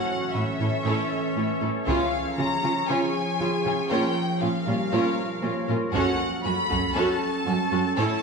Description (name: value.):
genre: cinematic, hybrid orchestral and electronic film score.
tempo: 118 BPM.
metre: 4/4.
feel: straight.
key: unclear.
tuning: A4 = 436 Hz.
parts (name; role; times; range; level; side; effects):
warm symphonic violin section; melody; 0.0-8.2 s; E5 to B5; -29 LUFS; left 3 dB; none.
warm symphonic violin section; second line; 0.0-8.2 s; C#4 to C#5; -33 LUFS; left 2 dB; none.
warm symphonic viola section; accompaniment; 0.0-8.2 s; C#4 to F#4; -29 LUFS; right 2 dB; none.
evolving wavetable pad; sustained chords; 0.0-8.2 s; E3 to C#5; -28 LUFS; right 1 dB; chorus, built-in reverb.
clear concert grand piano; texture; 0.0-8.0 s; G3 to C#5; -35 LUFS; left 1 dB; digital delay.
warm symphonic cello section; bass; 0.3-8.1 s; F#2 to C#3; -30 LUFS; right 3 dB; none.
taiko ensemble; drums; 1.9-2.9, 5.9-6.9 s; none; -34 LUFS; equal; none.
room: wet scoring stage reverb, RT60 1.5 s.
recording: studio reverb.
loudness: -22 LUFS.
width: side -4 dB against mid.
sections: 0.0-8.2 A section.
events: none.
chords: 0.0 A; 1.9 C#; 3.9 A#m; 5.9 F#m.